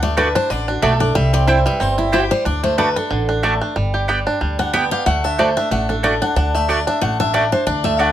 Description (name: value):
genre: bluegrass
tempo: 184 BPM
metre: 4/4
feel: swing 55% on 8ths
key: D mixolydian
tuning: A4 = 443 Hz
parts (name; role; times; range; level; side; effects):
- picked steel-string acoustic guitar; accompaniment; 0.0-8.1 s; E4 to G5; -20 LUFS; left 1 dB; none
- bluegrass banjo; arpeggios; 0.0-8.1 s; D3 to G4; -20 LUFS; right 1 dB; none
- upright bass; bass; 0.0-8.1 s; G1 to D2; -21 LUFS; equal; none
- mandolin; stabs; 0.2-8.1 s; A3 to A5; -18 LUFS; right 3 dB; none
room: light reverb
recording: close, detailed microphones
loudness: -15 LUFS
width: side -11 dB against mid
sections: 0.0-3.8 A section; 3.8-8.1 A section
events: steel-string acoustic guitar solo 0.0-8.1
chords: 0.0 D; 1.2 C; 2.5 D; 3.8 G; 5.1 D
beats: 0.17 0.50 0.83 | 1.15 1.48 1.80 2.13 | 2.46 2.78 3.11 3.43 | 3.76 4.08 4.41 4.74 | 5.06 5.39 5.71 6.04 | 6.37 6.69 7.02 7.34 | 7.67 7.99